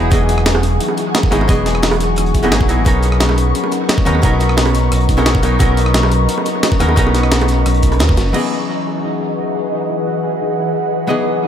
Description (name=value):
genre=liquid drum and bass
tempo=175 BPM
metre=4/4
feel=straight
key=E lydian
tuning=A4 = 440 Hz
part: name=archtop guitar, miked and amplified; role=accompaniment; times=0.0-11.5 s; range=E3 to D#5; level=-19 LUFS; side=left 2 dB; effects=dub echo
part: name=ethereal airy pad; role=sustained chords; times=0.0-11.5 s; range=E3 to C#6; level=-22 LUFS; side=equal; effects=ensemble chorus, built-in reverb, sidechain pumping
part: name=concert harp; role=arpeggios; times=0.0-11.5 s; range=C#4 to B4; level=-23 LUFS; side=left 2 dB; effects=low-pass filter, analog delay
part: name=smooth synth bass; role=bass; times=0.0-8.3 s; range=E1 to D#2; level=-15 LUFS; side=equal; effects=tube saturation
part: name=breakbeat sampler-style drum kit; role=drums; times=0.1-8.4 s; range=crash cymbal, hi-hat, rim click, snare drum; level=-20 LUFS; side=equal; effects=small room ambience
part: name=crunchy breakbeat drum kit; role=drums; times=0.1-8.3 s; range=hi-hat, snare drum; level=-26 LUFS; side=equal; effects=high-pass filter on hats, small room ambience, high-pass filter on snare, high-pass filter on room, dub echo
part: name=electronic kick drum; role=drums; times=0.1-8.2 s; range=none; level=-15 LUFS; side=equal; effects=small room ambience
part: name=bongos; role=percussion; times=0.5-8.0 s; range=none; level=-25 LUFS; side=right 5 dB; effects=none
room=light reverb, small room ambience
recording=echo-heavy mix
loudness=-12 LUFS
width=side -9 dB against mid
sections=0.0-8.3 A section; 8.3-11.5 B section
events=band accent 8.0; filter sweep on ambient pad 8.3-11.5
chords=0.0 Emaj9; 2.9 Bmaj9; 8.3 Emaj9